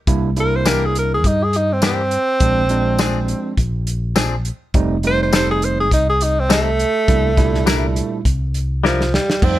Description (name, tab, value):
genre	straight-eighth soul blues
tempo	103 BPM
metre	4/4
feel	swing 54% on 16ths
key	unclear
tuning	A4 = 441 Hz
part	overdriven tine electric piano	accompaniment	0.1-9.6 s	Bb2 to E4	-22 LUFS	right 4 dB	none
part	fingered electric bass	bass	0.1-9.6 s	F1 to G2	-20 LUFS	equal	none
part	warm soul drum kit	drums	0.1-9.6 s	crash cymbal, hi-hat, kick drum, snare drum, tambourine	-19 LUFS	equal	none
part	breathy tenor saxophone	melody	0.4-9.6 s	F3 to C5	-18 LUFS	right 1 dB	plate reverb
part	direct-recorded clean electric guitar	stabs	0.7-9.0 s	E3 to Bb4	-21 LUFS	left 7 dB	none
room	light reverb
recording	none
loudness	-15 LUFS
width	side -14 dB against mid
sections	0.0-9.4 A section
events	tenor saxophone solo 0.0-9.4; drum fill 8.8-9.4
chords	0.1 C9; 2.4 Bb9; 4.8 F9; 7.1 C9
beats	| 0.08 0.66 1.25 1.83 | 2.41 3.00 3.58 4.17 | 4.75 5.33 5.92 6.50 | 7.09 7.67 8.26 8.84 | 9.43